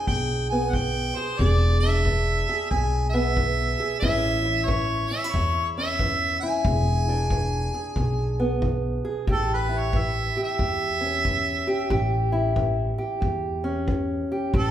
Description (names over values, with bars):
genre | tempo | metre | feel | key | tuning
acoustic country blues, solo or duo | 91 BPM | 4/4 | swing 64% on 8ths | unclear | A4 = 440 Hz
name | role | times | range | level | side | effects
warm harmonica | melody | 0.0-14.7 s | A4 to G#5 | -26 LUFS | right 1 dB | none
fingerpicked steel-string acoustic guitar | accompaniment | 0.0-14.7 s | E2 to G#4 | -27 LUFS | right 1 dB | none
upright bass | bass | 0.1-14.7 s | E1 to E2 | -26 LUFS | equal | none
kick drum | drums | 0.1-14.7 s | none | -29 LUFS | equal | none
room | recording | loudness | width
wet recital hall reverb, RT60 1.5 s | recorded in a church or concert hall | -22 LUFS | side -11 dB against mid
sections
0.0-9.3 A section; 9.3-14.7 B section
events
harmonica solo 9.3-14.7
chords
0.0 E7; 4.0 A; 6.7 E7; 9.3 A7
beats
0.09 0.74 | 1.40 2.06 2.72 3.38 | 4.03 4.69 5.35 6.00 | 6.66 7.32 7.97 8.63 | 9.29 9.94 10.60 11.26 | 11.91 12.57 13.22 13.88 | 14.53